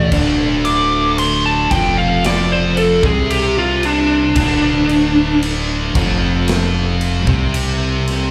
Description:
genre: stoner and doom metal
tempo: 57 BPM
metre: 4/4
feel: straight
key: D minor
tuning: A4 = 442 Hz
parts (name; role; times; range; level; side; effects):
- fuzz lead guitar; melody; 0.0-5.4 s; D4 to D6; -18 LUFS; equal; distortion, delay
- heavy high-gain guitar; riff; 0.0-8.3 s; D2 to C4; -28 LUFS; equal; distortion, slapback echo
- thick fuzz guitar; riff; 0.0-8.3 s; D2 to C4; -24 LUFS; equal; distortion, slapback echo
- thick fuzz guitar; riff; 0.0-8.3 s; D2 to C4; -25 LUFS; equal; distortion
- growling fingered electric bass; bass; 0.0-8.3 s; D1 to C2; -22 LUFS; equal; overdrive
- big rock drum kit; drums; 0.1-8.3 s; crash cymbal, kick drum, snare drum; -25 LUFS; equal; none
room: small room ambience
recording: live gig heard through the venue's PA, club reverb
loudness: -15 LUFS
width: mono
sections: 0.0-8.3 A section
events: lead electric guitar solo 0.0-8.3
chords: 0.0 Dm

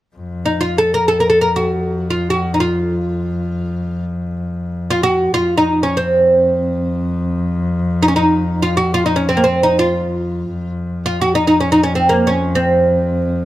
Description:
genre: Arabic maqam ensemble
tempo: free time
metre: none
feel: none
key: F maqam hijaz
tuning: A4 = 440 Hz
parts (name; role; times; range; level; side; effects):
- clear double bass; drone; 0.2-13.4 s; F2; -20 LUFS; left 1 dB; none
- oud; melody; 0.5-13.4 s; Bb3 to Bb4; -14 LUFS; right 1 dB; none
room: moderate recital hall reverb, RT60 1.7 s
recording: close, detailed microphones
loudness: -14 LUFS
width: side -14 dB against mid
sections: 0.2-13.4 A section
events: none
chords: none

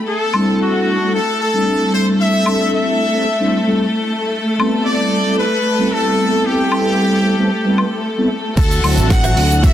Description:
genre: nu-disco, nu disco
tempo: 113 BPM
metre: 4/4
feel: straight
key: unclear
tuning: A4 = 440 Hz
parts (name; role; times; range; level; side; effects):
- bright studio string section; sustained chords; 0.0-9.7 s; A3 to F#5; -21 LUFS; left 1 dB; sidechain pumping
- brilliant trumpet section; melody; 0.1-9.7 s; F#4 to F#5; -19 LUFS; left 1 dB; tape echo
- mellow synth brass; accompaniment; 0.3-9.7 s; F#3 to C5; -17 LUFS; equal; chorus, cassette tape, sidechain pumping
- damped 70s drum kit; drums; 0.3-9.7 s; crash cymbal, hi-hat, shaker, snare drum, woodblock; -22 LUFS; left 1 dB; small room ambience
- fingered electric bass with an envelope filter; bass; 8.6-9.7 s; A1 to D2; -16 LUFS; equal; none
- electronic kick drum; drums; 8.6-9.7 s; none; -14 LUFS; equal; small room ambience
- direct-recorded clean electric guitar; riff; 9.1-9.5 s; F#4 to E5; -26 LUFS; right 3 dB; ensemble chorus
room: moderate plate reverb, RT60 1.8 s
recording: dense, heavily limited modern master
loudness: -13 LUFS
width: side -11 dB against mid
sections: 0.0-8.6 A section; 8.6-9.7 B section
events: drop 8.6-9.7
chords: 0.1 C6; 4.1 Am7; 8.6 D7

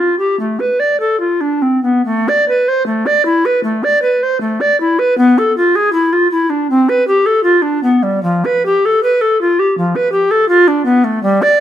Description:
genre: classical, baroque-style fantasia for unaccompanied recorder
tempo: 78 BPM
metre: 4/4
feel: uneven beats, rubato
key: A minor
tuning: A4 = 440 Hz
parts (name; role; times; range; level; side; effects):
- bass recorder; solo; 0.0-11.6 s; F3 to D5; -11 LUFS; equal; none
room: moderate stone room reverb, RT60 1.2 s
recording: minimal, uncompressed stereo recording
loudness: -11 LUFS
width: side -11 dB against mid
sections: 0.0-2.0 A section; 2.0-11.6 B section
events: none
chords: none

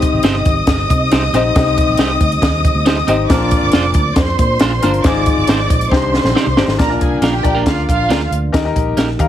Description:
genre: uptempo 1960s-style soul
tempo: 138 BPM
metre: 4/4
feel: straight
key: unclear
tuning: A4 = 440 Hz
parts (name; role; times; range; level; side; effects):
- dark symphonic violin section; second line; 0.0-8.3 s; F4 to Eb6; -19 LUFS; right 1 dB; none
- clear baby grand piano; accompaniment; 0.0-9.3 s; Ab2 to F5; -18 LUFS; left 5 dB; none
- mellow tonewheel organ; sustained chords; 0.0-9.3 s; C3 to D5; -26 LUFS; right 2 dB; none
- vintage muted fingered electric bass; bass; 0.0-9.3 s; F1 to Eb3; -19 LUFS; equal; none
- compact cocktail drum kit; drums; 0.0-9.3 s; hi-hat, kick drum, snare drum; -16 LUFS; equal; none
- electric guitar at the edge of break-up; stabs; 0.2-9.1 s; Bb3 to D5; -20 LUFS; right 5 dB; none
room: light reverb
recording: heavily compressed radio sound, multiband compression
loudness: -12 LUFS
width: side -11 dB against mid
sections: 0.0-6.8 A section; 6.8-9.3 B section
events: drum fill 5.9-6.8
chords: 0.0 Cm; 3.3 Bbadd9; 5.0 Fm7; 5.9 Cmadd9; 6.8 Bb; 8.5 Eb

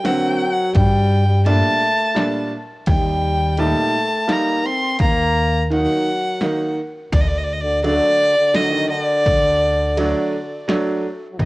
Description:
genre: klezmer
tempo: 84 BPM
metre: 3/4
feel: straight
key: D phrygian dominant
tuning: A4 = 441 Hz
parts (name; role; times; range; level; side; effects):
- clear violin; melody; 0.0-11.5 s; D5 to C6; -19 LUFS; equal; none
- warm trombone; second line; 0.0-11.5 s; D3 to C4; -24 LUFS; left 1 dB; cassette tape
- bright upright piano; accompaniment; 0.0-11.0 s; Bb2 to Eb4; -22 LUFS; right 1 dB; cassette tape
- punchy analog drum machine; drums; 0.0-11.5 s; kick drum, ride cymbal, snare drum; -20 LUFS; equal; cassette tape
- upright bass; bass; 0.8-11.5 s; D2 to G2; -19 LUFS; equal; none
room: moderate spring reverb, RT60 2.8 s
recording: home recording on cassette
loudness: -16 LUFS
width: side -20 dB against mid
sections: 0.0-11.4 A section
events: none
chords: 0.0 Gm; 2.9 Eb; 7.1 D

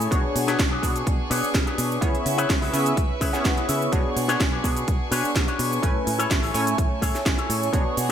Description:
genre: filtered disco house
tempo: 126 BPM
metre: 4/4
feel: straight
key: B dorian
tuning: A4 = 441 Hz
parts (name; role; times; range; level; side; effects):
- funky polysynth comp; accompaniment; 0.0-8.1 s; A3 to G#5; -27 LUFS; equal; chorus, phaser, sidechain pumping
- rich chamber violin section; sustained chords; 0.0-8.1 s; A3 to C#6; -32 LUFS; right 1 dB; sidechain pumping
- electric guitar with an envelope filter; riff; 0.0-8.1 s; D4 to F#5; -28 LUFS; left 4 dB; vintage 12-bit sampler grit, sidechain pumping
- modern bright fingered electric bass; bass; 0.0-8.1 s; A1 to C#3; -29 LUFS; equal; sidechain pumping
- house drum kit; drums; 0.0-8.1 s; hi-hat, shaker, snare drum; -27 LUFS; right 1 dB; sidechain pumping on hats, studio reverb, sidechain pumping on perc, gated reverb
- electronic kick drum; drums; 0.1-7.8 s; none; -24 LUFS; equal; studio reverb
room: light reverb, digital ambience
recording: bright 1980s-style digital production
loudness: -20 LUFS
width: side -9 dB against mid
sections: 0.0-8.1 A section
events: clean electric guitar fill 3.2-3.9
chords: 0.1 Bm69; 2.0 C#m7; 3.9 Bm69; 5.8 Amaj7

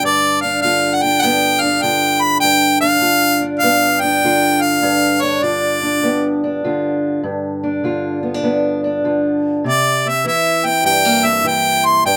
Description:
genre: acoustic country blues, solo or duo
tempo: 100 BPM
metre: 4/4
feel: swing 66% on 8ths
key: G mixolydian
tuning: A4 = 439 Hz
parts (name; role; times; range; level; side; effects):
- bright harmonica; melody; 0.0-12.2 s; C#5 to C6; -16 LUFS; equal; none
- fingerpicked steel-string acoustic guitar; accompaniment; 0.0-12.2 s; G2 to F4; -20 LUFS; equal; none
room: light reverb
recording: close, detailed microphones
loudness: -16 LUFS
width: mono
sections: 0.0-12.2 A section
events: none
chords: 0.0 G7; 9.6 C7

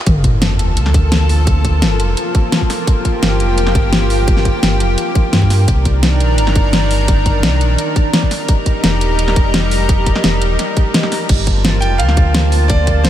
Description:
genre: liquid drum and bass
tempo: 171 BPM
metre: 4/4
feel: straight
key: G minor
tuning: A4 = 440 Hz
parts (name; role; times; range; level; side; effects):
- lush unison pad; sustained chords; 0.1-13.1 s; Eb3 to A5; -18 LUFS; equal; chorus
- sub bass with octave; bass; 0.1-13.1 s; Eb1 to G2; -14 LUFS; equal; none
- electronic kick drum; drums; 0.1-12.9 s; none; -14 LUFS; equal; studio reverb
- pop drum kit; drums; 0.1-13.1 s; crash cymbal, hi-hat, snare drum; -18 LUFS; equal; studio reverb
- sub drop; sound effects; 0.1-1.5 s; none; -21 LUFS; equal; none
- bright concert grand piano; melody; 11.8-13.1 s; C5 to G5; -19 LUFS; right 2 dB; analog delay
room: light reverb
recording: none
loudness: -11 LUFS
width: side -11 dB against mid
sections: 0.1-13.1 A section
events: drop 0.1-13.1; impact 0.1-1.5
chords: 0.1 Gm9; 5.7 Cm9; 8.3 F9sus4; 11.3 Gm9

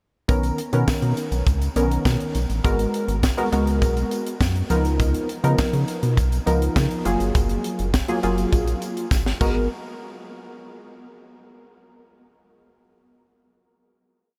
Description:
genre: early-eighties boogie funk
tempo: 102 BPM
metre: 4/4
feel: straight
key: unclear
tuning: A4 = 440 Hz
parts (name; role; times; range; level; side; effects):
- funky polysynth comp; accompaniment; 0.3-9.7 s; D3 to A#4; -27 LUFS; equal; chorus
- rubbery square bass; bass; 0.3-9.7 s; F#1 to C#3; -25 LUFS; equal; none
- tight funk drum kit; drums; 0.3-9.5 s; crash cymbal, hi-hat, kick drum, snare drum; -27 LUFS; equal; none
- tambourine; percussion; 0.3-9.7 s; none; -45 LUFS; equal; none
room: moderate huge ambient reverb, RT60 6.3 s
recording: dreamy mix soaked in reverb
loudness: -22 LUFS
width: mono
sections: 0.3-9.7 verse; 9.7-12.1 final hit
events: drum fill 9.1-9.7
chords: 0.3 Bmaj9; 2.6 G#m9; 4.7 C#13; 7.1 F#maj9; 9.4 G#m9; 9.7 N.C.

